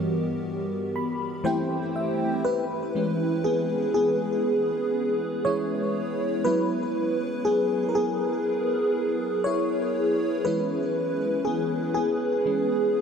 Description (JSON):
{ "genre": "R&B", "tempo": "60 BPM", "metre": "4/4", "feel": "swing 58% on 16ths", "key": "unclear", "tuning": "A4 = 440 Hz", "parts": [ { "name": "FM electric piano with soft pad layer", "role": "solo", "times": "0.0-13.0 s", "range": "G2 to B5", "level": "-23 LUFS", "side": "equal", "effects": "chorus, phaser, ping-pong delay" } ], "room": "wet huge ambient reverb, RT60 8.8 s", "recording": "dreamy mix soaked in reverb", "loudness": "-23 LUFS", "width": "side -6 dB against mid", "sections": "0.0-2.5 A section; 2.5-13.0 B section", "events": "FM electric piano fill 0.5-2.5; FM electric piano solo 2.5-13.0", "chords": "0.0 Em/G; 1.5 C6; 2.5 E6; 6.5 F#7sus4; 10.5 E6" }